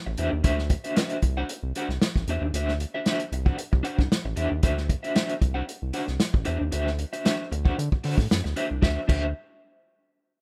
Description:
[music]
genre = funk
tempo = 114 BPM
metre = 4/4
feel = straight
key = D mixolydian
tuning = A4 = 438 Hz
[part]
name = electric guitar at the edge of break-up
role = accompaniment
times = 0.1-9.3 s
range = D4 to F#5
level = -32 LUFS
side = equal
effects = tremolo
[part]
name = round analog bass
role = bass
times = 0.1-9.3 s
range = A1 to D3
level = -30 LUFS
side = equal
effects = none
[part]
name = warm soul drum kit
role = drums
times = 0.2-9.2 s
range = crash cymbal, hi-hat, kick drum, snare drum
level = -27 LUFS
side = equal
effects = none
[sound]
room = studio ambience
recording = rough home demo mix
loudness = -26 LUFS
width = mono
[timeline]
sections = 0.0-8.8 A section; 8.8-10.4 B section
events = none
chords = 0.0 D9

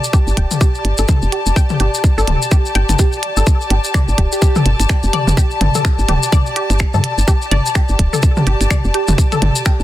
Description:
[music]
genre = minimal techno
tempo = 126 BPM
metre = 4/4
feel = swing 59% on 16ths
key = unclear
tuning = A4 = 440 Hz
[part]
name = maracas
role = percussion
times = 0.0-9.8 s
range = none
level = -23 LUFS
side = left 3 dB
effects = none
[part]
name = dark chamber string section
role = texture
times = 0.0-9.8 s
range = G4 to A5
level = -21 LUFS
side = left 2 dB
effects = sidechain pumping
[part]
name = resonant blip pluck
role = riff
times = 0.1-9.8 s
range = G4 to G5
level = -24 LUFS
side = right 1 dB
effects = chorus, phaser, cassette tape, sidechain pumping, tape echo
[part]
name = electronic kick drum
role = drums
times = 0.1-9.8 s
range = none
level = -13 LUFS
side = equal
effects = none
[part]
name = woody FM bass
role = bass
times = 0.3-9.8 s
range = D1 to G2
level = -16 LUFS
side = equal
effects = sidechain pumping
[part]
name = minimal click drum kit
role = drums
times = 0.4-9.8 s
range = finger snaps, hi-hat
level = -20 LUFS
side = right 1 dB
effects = soft clipping on snare
[part]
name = electronic toms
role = percussion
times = 0.5-9.5 s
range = none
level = -20 LUFS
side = left 1 dB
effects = none
[part]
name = airy dreamy lead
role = melody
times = 4.3-4.5 s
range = G4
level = -24 LUFS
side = equal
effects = chorus, dub echo
[sound]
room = light reverb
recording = dense, heavily limited modern master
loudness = -12 LUFS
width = side -14 dB against mid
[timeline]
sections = 0.0-9.8 A section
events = none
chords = 0.0 G5

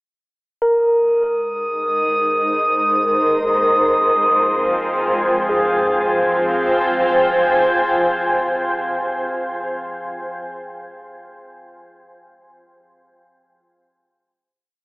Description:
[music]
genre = ambient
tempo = free time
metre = none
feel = none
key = F minor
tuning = A4 = 440 Hz
[part]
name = granular cloud pad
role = sustained chords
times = 1.8-8.7 s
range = Ab3 to Ab5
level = -18 LUFS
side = equal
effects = built-in reverb
[part]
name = overdriven tine electric piano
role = arpeggios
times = 0.6-10.4 s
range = Ab4 to Bb4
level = -22 LUFS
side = equal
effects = diffuse ambient delay
[part]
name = drifting glass-harmonics texture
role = texture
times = 1.3-5.5 s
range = Eb6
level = -19 LUFS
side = equal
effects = chorus, built-in reverb
[part]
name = bowed-like drone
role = drone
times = 4.1-8.8 s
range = F3 to C4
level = -29 LUFS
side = equal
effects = built-in reverb
[sound]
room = wet cathedral reverb, RT60 6.4 s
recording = dreamy mix soaked in reverb, telephone sound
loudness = -15 LUFS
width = side -25 dB against mid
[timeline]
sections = 0.6-5.5 A section; 5.5-7.9 final chord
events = filter sweep on ambient pad 0.6-5.5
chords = 0.6 Ab; 3.1 Fm7; 5.5 Fmadd9

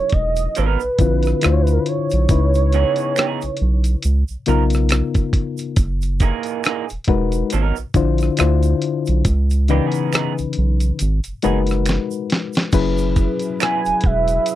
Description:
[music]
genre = R&B, neo-soul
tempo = 69 BPM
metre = 4/4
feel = swing 57% on 16ths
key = unclear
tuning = A4 = 440 Hz
[part]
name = warm velvety synth lead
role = melody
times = 0.0-4.5, 13.6-14.6 s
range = A#4 to G#5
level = -20 LUFS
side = right 3 dB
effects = chorus, slapback echo
[part]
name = reed electric piano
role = accompaniment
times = 0.0-14.6 s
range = C#3 to C5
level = -21 LUFS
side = left 7 dB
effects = none
[part]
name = round analog bass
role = bass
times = 0.0-14.4 s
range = E1 to D2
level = -18 LUFS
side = equal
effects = none
[part]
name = dusty soul sampler-style drum kit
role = drums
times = 0.1-14.6 s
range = crash cymbal, hi-hat, kick drum, rim click, snare drum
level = -19 LUFS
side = equal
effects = none
[part]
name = tube shaker and finger snaps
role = percussion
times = 0.4-14.6 s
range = none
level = -33 LUFS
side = right 10 dB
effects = none
[part]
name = electric guitar through a small old amp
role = second line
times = 0.6-13.8 s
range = E3 to A#4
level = -24 LUFS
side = right 11 dB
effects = wide subtle chorus
[part]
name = warm analog pad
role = sustained chords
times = 12.7-14.6 s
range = F#3 to B4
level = -28 LUFS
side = right 5 dB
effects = chorus
[sound]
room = little or no reverb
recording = dry, close 1970s-style studio recording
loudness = -16 LUFS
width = side -13 dB against mid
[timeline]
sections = 0.0-12.7 A section; 12.7-14.6 B section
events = drum fill 11.9-12.7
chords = 0.0 F#13; 0.6 G#m9; 1.4 Dm9; 2.3 C#m9; 4.0 C#13; 5.8 F#13; 7.5 G#m9; 8.4 Dm9; 9.2 C#m9; 11.0 G#m7; 12.7 F#9sus4

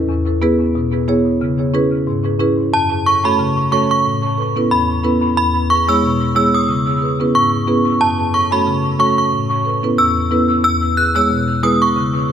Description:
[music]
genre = dancehall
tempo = 91 BPM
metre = 4/4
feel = swing 56% on 16ths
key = F# minor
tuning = A4 = 440 Hz
[part]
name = marimba with medium mallets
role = accompaniment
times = 0.1-12.3 s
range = E2 to C#5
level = -16 LUFS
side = equal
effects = dub echo
[part]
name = synth chime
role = melody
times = 2.7-11.9 s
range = A5 to F#6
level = -16 LUFS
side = right 1 dB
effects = ensemble chorus, dub echo
[sound]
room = moderate spring reverb, RT60 1.8 s, studio reverb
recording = echo-heavy mix, faint mains hum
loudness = -13 LUFS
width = side -8 dB against mid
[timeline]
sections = 0.0-2.7 A section; 2.7-12.3 B section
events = none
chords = 0.1 E; 1.4 C#m7; 2.7 F#m; 4.1 Aadd9; 5.4 E; 6.7 C#m7; 8.0 F#m; 9.3 Aadd9; 10.6 E

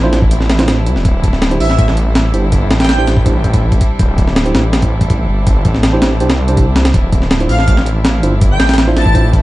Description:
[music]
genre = drum and bass, jungle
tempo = 163 BPM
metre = 4/4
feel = straight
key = unclear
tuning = A4 = 440 Hz
[part]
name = rich chamber string section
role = sustained chords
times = 0.0-9.4 s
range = F3 to E4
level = -22 LUFS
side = equal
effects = none
[part]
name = tine electric piano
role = stabs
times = 0.0-9.3 s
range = D4 to C5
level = -20 LUFS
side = right 2 dB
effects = vintage 12-bit sampler grit, dub echo
[part]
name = detuned saw bass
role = bass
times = 0.0-9.4 s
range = D1 to C2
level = -14 LUFS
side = equal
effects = none
[part]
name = breakbeat sampler-style drum kit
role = drums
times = 0.1-9.4 s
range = hi-hat, kick drum, snare drum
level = -13 LUFS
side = equal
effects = small room ambience
[part]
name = airy dreamy lead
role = melody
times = 1.6-3.1, 7.5-9.2 s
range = E5 to A5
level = -20 LUFS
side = right 1 dB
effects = chorus, dub echo
[sound]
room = little or no reverb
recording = vinyl crackle, nothing above 10.7 kHz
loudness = -10 LUFS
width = side -17 dB against mid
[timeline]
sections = 0.0-9.4 A section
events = none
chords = 0.0 Dm9; 1.0 Cadd9/D; 6.9 Dm9

